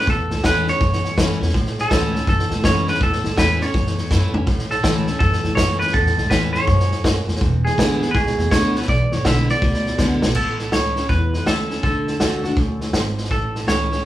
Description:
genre	rockabilly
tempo	163 BPM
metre	4/4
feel	swing 64% on 8ths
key	A major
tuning	A4 = 438 Hz
part	clean electric guitar	melody	0.0-14.0 s	G#4 to E5	-22 LUFS	right 1 dB	none
part	picked steel-string acoustic guitar	accompaniment	0.0-14.0 s	E2 to F#4	-24 LUFS	left 2 dB	none
part	vintage drum kit	drums	0.0-14.0 s	crash cymbal, hi-hat, kick drum, snare drum, toms	-21 LUFS	equal	none
part	upright bass	bass	0.1-14.0 s	E1 to A2	-22 LUFS	equal	none
room	light reverb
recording	band playing live in one room, small room ambience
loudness	-16 LUFS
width	side -14 dB against mid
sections	0.0-10.4 A section; 10.4-14.1 B section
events	drum fill 4.1-4.5, 10.0-10.4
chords	0.0 A; 7.4 E7; 10.4 A; 11.8 D; 13.3 A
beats	| 0.08 0.45 0.81 1.18 | 1.55 1.92 2.28 2.65 | 3.01 3.38 3.75 4.11 | 4.48 4.84 5.21 5.58 | 5.94 6.31 6.68 7.04 | 7.41 7.78 8.14 8.51 | 8.88 9.25 9.62 9.99 | 10.36 10.72 11.09 11.46 | 11.83 12.20 12.57 12.94 | 13.31 13.68 14.05

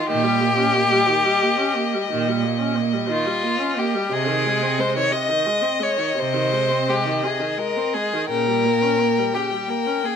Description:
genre	classical, slow romantic movement for string quartet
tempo	58 BPM (dotted quarters)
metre	12/8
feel	rubato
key	Ab major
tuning	A4 = 442 Hz
part	warm violin	melody	0.0-10.2 s	Eb5 to G5	-27 LUFS	left 10 dB	none
part	rich violin	second line	0.0-10.2 s	F4 to Eb5	-21 LUFS	left 3 dB	none
part	rich viola	accompaniment	0.0-10.2 s	C3 to Db4	-26 LUFS	right 3 dB	none
part	rich cello	bass	0.1-9.2 s	Bb2 to C3	-25 LUFS	right 8 dB	none
room	light reverb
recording	minimal, uncompressed stereo recording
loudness	-18 LUFS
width	side -7 dB against mid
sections	0.0-10.2 A section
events	none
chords	0.1 Eb7/Bb; 4.1 Ab/C; 8.3 Gdim/Bb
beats	| 0.08 1.08 2.09 3.10 | 4.12 5.14 6.19 7.25 | 8.30 9.34

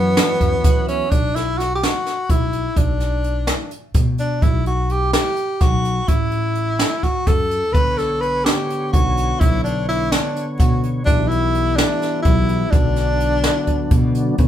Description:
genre	progressive instrumental, band music in an uneven meter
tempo	253 BPM (eighths)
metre	7/8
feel	straight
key	B minor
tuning	A4 = 438 Hz
part	bright tenor saxophone	melody	0.0-14.1 s	B3 to B4	-21 LUFS	equal	none
part	tonewheel organ	accompaniment	0.0-1.1, 7.7-14.5 s	D3 to F#5	-24 LUFS	left 1 dB	chorus vibrato
part	upright bass	bass	0.0-14.5 s	A1 to B2	-21 LUFS	equal	none
part	jazz brush drum kit	drums	0.2-14.5 s	hi-hat, kick drum, snare drum	-18 LUFS	right 1 dB	none
room	moderate studio reverb, RT60 0.5 s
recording	band playing live in one room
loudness	-16 LUFS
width	side -11 dB against mid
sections	0.0-1.1 A section; 1.1-14.4 B section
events	tonewheel organ fill 0.4-1.1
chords	0.0 F#7sus4; 1.1 Bm; 6.1 A5; 7.8 Bmadd9; 11.1 Em/B; 12.7 Bm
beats	0.17 0.41 0.64 0.88 | 1.11 1.35 1.59 1.82 2.06 2.30 2.54 | 2.77 3.01 3.25 3.48 3.72 3.96 4.19 | 4.43 4.67 4.91 5.14 5.38 5.62 5.85 | 6.09 6.33 6.56 6.80 7.04 7.28 7.51 | 7.75 7.99 8.22 8.46 8.70 8.94 9.17 | 9.41 9.65 9.88 10.12 10.36 10.60 10.83 | 11.07 11.31 11.54 11.78 12.02 12.26 12.49 | 12.73 12.97 13.21 13.44 13.68 13.92 14.15 | 14.39

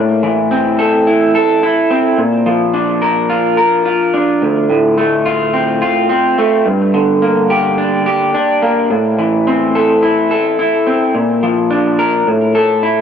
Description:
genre	rock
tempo	107 BPM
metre	4/4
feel	straight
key	unclear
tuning	A4 = 439 Hz
part	electric guitar through a small old amp	solo	0.0-13.0 s	D2 to Bb4	-11 LUFS	equal	wide subtle chorus, tape echo
room	light reverb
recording	dark, warm production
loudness	-11 LUFS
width	side -8 dB against mid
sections	0.0-13.0 A section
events	none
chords	0.0 Am; 2.2 Bb; 4.4 Dm7; 6.7 Gm; 8.9 Am; 11.1 Bb; 12.3 A5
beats	0.50 1.06 1.62 | 2.18 2.74 3.30 3.86 | 4.42 4.98 5.54 6.10 | 6.66 7.22 7.78 8.34 | 8.90 9.46 10.02 10.58 | 11.14 11.70 12.26 12.83

